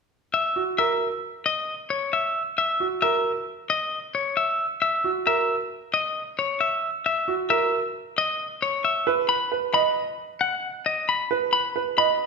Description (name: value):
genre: classical, minimalist pattern music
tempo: 134 BPM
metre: 5/4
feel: straight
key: C# dorian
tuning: A4 = 440 Hz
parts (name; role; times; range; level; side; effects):
- semi-hollow electric guitar; melody; 0.3-12.3 s; C#5 to B5; -23 LUFS; left 3 dB; none
- clear baby grand piano; arpeggios; 0.6-12.3 s; F#4 to D#5; -25 LUFS; right 8 dB; none
room: wet recital hall reverb, RT60 1.4 s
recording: minimal, uncompressed stereo recording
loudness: -22 LUFS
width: side -4 dB against mid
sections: 0.1-12.3 A section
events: none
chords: 0.1 C#m6 (rootless); 9.1 N.C.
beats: | 0.11 0.56 1.01 1.45 1.90 | 2.35 2.80 3.25 3.69 4.14 | 4.59 5.04 5.48 5.93 6.38 | 6.83 7.28 7.72 8.17 8.62 | 9.07 9.51 9.96 10.41 10.86 | 11.30 11.75 12.20